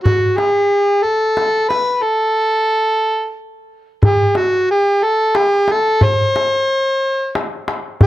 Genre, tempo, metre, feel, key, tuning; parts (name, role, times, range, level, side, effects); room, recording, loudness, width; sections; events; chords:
Arabic maqam ensemble; 90 BPM; 3/4; straight; A4 = 440 Hz
overdriven harmonica; melody; 0.0-8.1 s; F#4 to C5+49c; -14 LUFS; equal
darbuka; percussion; 0.1-8.1 s; -16 LUFS; equal
studio reverb; dry, close 1970s-style studio recording; -13 LUFS; side -14 dB against mid
0.0-4.0 A section; 4.0-8.1 B section
break 2.0-4.0